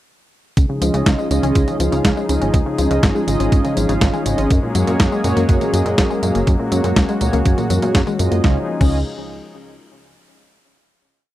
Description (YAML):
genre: italo disco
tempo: 122 BPM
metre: 4/4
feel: straight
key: Db major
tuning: A4 = 438 Hz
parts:
  - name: warm analog pad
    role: sustained chords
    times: 0.6-8.7 s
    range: F3 to Ab4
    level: -22 LUFS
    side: left 2 dB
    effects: chorus
  - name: chorused synth bass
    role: bass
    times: 0.6-9.0 s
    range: Gb1 to Gb2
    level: -20 LUFS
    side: equal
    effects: none
  - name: clean 12-bit digital drum machine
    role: drums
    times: 0.6-8.9 s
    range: crash cymbal, hi-hat, snare drum, tambourine, toms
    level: -23 LUFS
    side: equal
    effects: none
  - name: electronic kick drum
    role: drums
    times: 0.6-8.9 s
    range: none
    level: -16 LUFS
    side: equal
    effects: none
  - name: analog pluck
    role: arpeggios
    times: 0.7-9.0 s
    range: Bb2 to Db4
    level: -24 LUFS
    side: left 2 dB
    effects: chorus, tape echo
  - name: mellow synth brass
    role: stabs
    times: 0.8-9.0 s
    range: Bb3 to F5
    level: -22 LUFS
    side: right 3 dB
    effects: chorus, tape echo
room: light reverb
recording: dry, close 1970s-style studio recording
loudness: -14 LUFS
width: side -14 dB against mid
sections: 0.6-8.4 verse; 8.4-10.4 final chord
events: none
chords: 0.6 Dbadd9; 4.5 Gbadd9; 8.4 Dbadd9